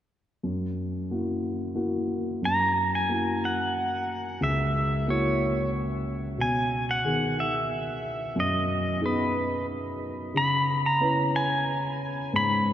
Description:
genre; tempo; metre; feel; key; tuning
folk; 91 BPM; 3/4; straight; unclear; A4 = 440 Hz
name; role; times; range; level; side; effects
dark grand piano; accompaniment; 0.4-12.7 s; C#2 to B4; -28 LUFS; equal; none
pedal steel guitar; melody; 2.5-12.7 s; B4 to B5; -26 LUFS; equal; none
room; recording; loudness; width
wet cathedral reverb, RT60 5.2 s; in a vast, echoing space; -24 LUFS; side -11 dB against mid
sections
0.4-2.4 A section; 2.4-12.7 B section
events
none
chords
0.4 F#7; 6.4 B6; 10.3 C#m7

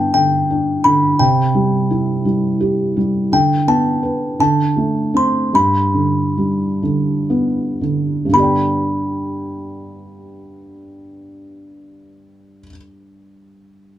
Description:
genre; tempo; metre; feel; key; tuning
children's music, lullaby; 36-57 BPM (dotted quarters); 6/8; straight; G major; A4 = 439 Hz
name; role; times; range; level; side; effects
music box; melody; 0.0-12.7 s; G5 to C6; -17 LUFS; left 1 dB; none
felt-muted upright piano; accompaniment; 0.0-14.0 s; G2 to G5; -17 LUFS; right 1 dB; none
room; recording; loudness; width
light reverb; close, detailed microphones; -14 LUFS; side -12 dB against mid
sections
0.0-8.3 A section; 8.3-14.0 B section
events
slowing down 3.3-8.3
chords
0.0 G; 1.2 C; 3.3 Gadd9/D; 4.4 D5; 5.5 G

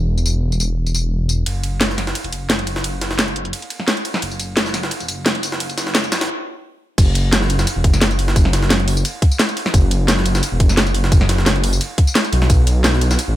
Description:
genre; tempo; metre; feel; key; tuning
liquid drum and bass; 174 BPM; 4/4; swing 53% on 16ths; unclear; A4 = 440 Hz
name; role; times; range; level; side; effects
dark detuned saw bass; bass; 0.0-13.4 s; E1 to B1; -18 LUFS; equal; none
garage drum kit; drums; 0.2-13.3 s; crash cymbal, hi-hat, snare drum, tambourine; -20 LUFS; equal; none
jungle sampler-style drum kit; drums; 1.5-13.3 s; hi-hat, ride cymbal, snare drum; -23 LUFS; equal; high-pass filter on cymbals, high-pass filter on snare, high-pass filter on hats, high-pass filter on room
electronic kick drum; drums; 7.0-12.6 s; none; -13 LUFS; equal; none
room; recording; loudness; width
little or no reverb; high-pass filter; -15 LUFS; side -14 dB against mid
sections
0.0-1.5 A section; 1.5-7.0 B section; 7.0-13.4 C section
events
build-up 1.5-7.0; stop 6.3-7.0; drop 7.0-13.4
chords
none

